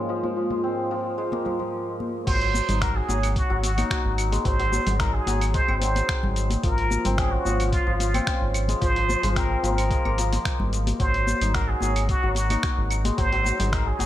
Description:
organic downtempo; 110 BPM; 4/4; straight; Ab mixolydian; A4 = 440 Hz
warm analog pad; sustained chords; 0.0-2.3 s; Ab2 to Eb5; -33 LUFS; right 2 dB; chorus, sidechain pumping
santur; arpeggios; 0.0-14.1 s; F3 to Gb4; -28 LUFS; left 1 dB; ping-pong delay
congas; percussion; 0.2-14.1 s; -33 LUFS; left 3 dB
trumpet with plunger mute; melody; 2.3-14.1 s; F4 to C5; -28 LUFS; right 1 dB; ping-pong delay
round analog bass; bass; 2.3-14.1 s; Ab1; -25 LUFS; equal; sidechain pumping
dusty soul sampler-style drum kit; drums; 2.3-14.1 s; claves, crash cymbal, finger snaps, hi-hat, shaker; -32 LUFS; equal
electronic kick drum; drums; 2.3-13.8 s; -26 LUFS; equal
light reverb, digital ambience; low-pass filter; -21 LUFS; side -13 dB against mid
0.0-2.3 A section; 2.3-14.1 B section
filter sweep 0.0-2.3
0.0 Bbm11/Ab; 2.3 Ab7; 6.6 Bbm9/Ab; 11.0 Ab7
| 0.09 0.64 1.18 1.73 | 2.27 2.82 3.36 3.91 | 4.45 5.00 5.54 6.09 | 6.63 7.18 7.73 8.27 | 8.82 9.36 9.91 10.45 | 11.00 11.54 12.09 12.63 | 13.18 13.73

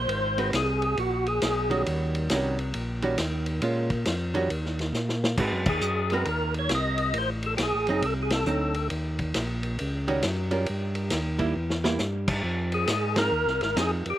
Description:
soul jazz organ trio; 136 BPM; 4/4; swing 65% on 8ths; A4 = 442 Hz
percussive tonewheel organ; melody; 0.0-1.8, 5.7-8.9, 12.7-14.2 s; Gb4 to Eb5; -27 LUFS; equal; slow rotary speaker, overdrive, chorus vibrato
overdriven tonewheel organ; bass; 0.0-14.1 s; F#1 to Bb2; -29 LUFS; equal; slow rotary speaker
vintage drum kit; drums; 0.1-14.1 s; crash cymbal, hi-hat, kick drum, ride cymbal, snare drum; -30 LUFS; equal
archtop guitar, miked and amplified; accompaniment; 0.4-14.0 s; Eb3 to B4; -29 LUFS; right 3 dB; slapback echo
little or no reverb; recorded outdoors, with no room sound; -24 LUFS; side -13 dB against mid
0.0-14.2 A section
drum fill 4.9-5.4, 11.6-12.0; band accent 5.6, 8.2, 13.1
0.1 Ab7#9; 1.9 Eb7#9; 3.6 Bbm7; 4.5 Eb5; 5.4 Ab7#9; 7.1 Adim7; 8.9 Eb7#9; 10.7 Eb; 11.6 Edim; 12.4 Fm7
| 0.09 0.53 0.97 1.41 | 1.86 2.30 2.74 3.18 | 3.62 4.06 4.50 4.94 | 5.38 5.82 6.26 6.71 | 7.15 7.59 8.03 8.47 | 8.91 9.35 9.79 10.23 | 10.67 11.12 11.56 12.00 | 12.44 12.88 13.32 13.77

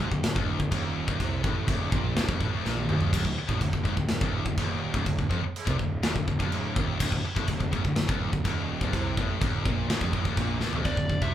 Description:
heavy metal; 124 BPM; 4/4; straight; D minor; A4 = 440 Hz
high-gain distorted guitar; riff; 0.0-11.3 s; D2 to C3; -32 LUFS; left 7 dB; distortion
sludgy distorted guitar; riff; 0.0-11.3 s; D2 to C3; -34 LUFS; right 6 dB; overdrive
fuzz picked electric bass; bass; 0.0-11.3 s; D1 to C2; -33 LUFS; equal; overdrive
big rock drum kit; drums; 0.0-11.3 s; china cymbal, crash cymbal, kick drum, snare drum, toms; -27 LUFS; right 1 dB
high-gain lead guitar; melody; 10.9-11.3 s; D5 to E5; -31 LUFS; equal; distortion
light reverb; band playing live in one room; -25 LUFS; side -11 dB against mid
0.0-10.9 A section
drum fill 2.7-3.1, 10.6
0.0 Dm
0.24 0.72 | 1.20 1.69 2.17 2.65 | 3.13 3.62 4.10 4.58 | 5.07 5.55 6.03 6.52 | 7.00 7.48 7.97 8.45 | 8.93 9.41 9.90 10.38 | 10.86

